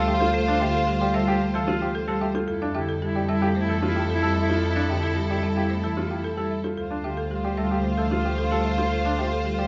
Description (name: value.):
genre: classical, minimalist pattern music.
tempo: 112 BPM.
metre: 4/4.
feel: straight.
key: D minor.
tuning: A4 = 440 Hz.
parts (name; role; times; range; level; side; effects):
folk marimba with medium hard mallets; melody; 0.0-9.7 s; G4 to F5; -35 LUFS; equal; none.
mellow soprano saxophone; second line; 0.0-9.7 s; E4 to F4; -31 LUFS; equal; none.
marimba with medium mallets; accompaniment; 0.0-9.6 s; D3 to A3; -31 LUFS; equal; none.
rich symphonic string section; sustained chords; 0.0-9.7 s; E4 to C5; -35 LUFS; equal; none.
warm baby grand piano; arpeggios; 0.0-9.7 s; D4 to A4; -32 LUFS; equal; none.
warm double bass; bass; 0.0-9.7 s; D2 to F2; -30 LUFS; equal; none.
room: wet large studio reverb, RT60 1.3 s.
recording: nothing above 7.6 kHz.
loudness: -24 LUFS.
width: mono.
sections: 0.0-9.7 A section.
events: none.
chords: 0.0 Dm11; 2.5 Fmaj9; 6.8 Dm11.